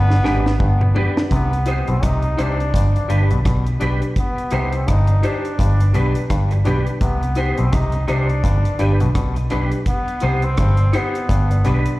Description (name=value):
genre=roots reggae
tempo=84 BPM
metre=4/4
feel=swing 59% on 16ths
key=C harmonic minor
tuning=A4 = 441 Hz
part: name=bright trombone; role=melody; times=0.0-12.0 s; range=B3 to Eb4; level=-26 LUFS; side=left 1 dB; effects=tape echo, slapback echo
part: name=mellow clav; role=riff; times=0.0-11.8 s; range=G2 to C3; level=-28 LUFS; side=left 3 dB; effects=slapback echo
part: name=vintage muted fingered electric bass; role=bass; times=0.0-11.8 s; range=G1 to C2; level=-17 LUFS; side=equal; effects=none
part: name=deep reggae drum kit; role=drums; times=0.1-12.0 s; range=hi-hat, kick drum, rim click, snare drum, toms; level=-21 LUFS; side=equal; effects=none
part: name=electric guitar at the edge of break-up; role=accompaniment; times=0.2-11.8 s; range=D4 to C5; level=-28 LUFS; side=right 3 dB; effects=ensemble chorus, tape echo, slapback echo
part: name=dark upright piano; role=stabs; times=0.2-11.9 s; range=D4 to C5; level=-28 LUFS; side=left 4 dB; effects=slapback echo
room=studio reverb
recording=live gig heard through the venue's PA, recital hall reverb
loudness=-16 LUFS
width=side -18 dB against mid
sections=0.0-1.3 A section; 1.3-12.0 B section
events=drum fill 0.0-1.3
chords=0.0 G; 1.3 Cm; 2.7 G; 4.2 Cm; 5.6 G; 7.0 Cm; 8.4 G; 9.9 Cm; 11.3 G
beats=0.60 | 1.31 2.02 2.73 3.45 | 4.16 4.87 5.59 6.30 | 7.01 7.72 8.44 9.15 | 9.87 10.58 11.29